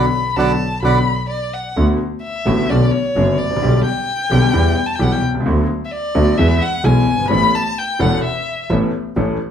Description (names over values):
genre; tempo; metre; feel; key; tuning
tango; 130 BPM; 4/4; rubato; unclear; A4 = 444 Hz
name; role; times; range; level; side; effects
bandoneon; melody; 0.0-1.0 s; D5 to B5; -21 LUFS; right 6 dB; none
warm violin; second line; 0.0-8.7 s; C#5 to B5; -20 LUFS; left 2 dB; none
clear concert grand piano; accompaniment; 0.0-9.4 s; E1 to A4; -18 LUFS; left 1 dB; none
clear double bass; bass; 0.0-9.4 s; E1 to E2; -19 LUFS; right 1 dB; none
room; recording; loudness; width
wet club reverb, RT60 0.8 s; heard from further back in the room; -14 LUFS; side -8 dB against mid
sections
0.0-1.8 A section; 1.8-9.5 B section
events
band accent 0.0-1.8; violin solo 1.8-9.5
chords
0.0 Bm; 1.8 D6; 2.7 Bmadd9; 3.6 G/B; 4.5 Em; 5.5 Bm/D; 6.4 E; 7.3 Aadd9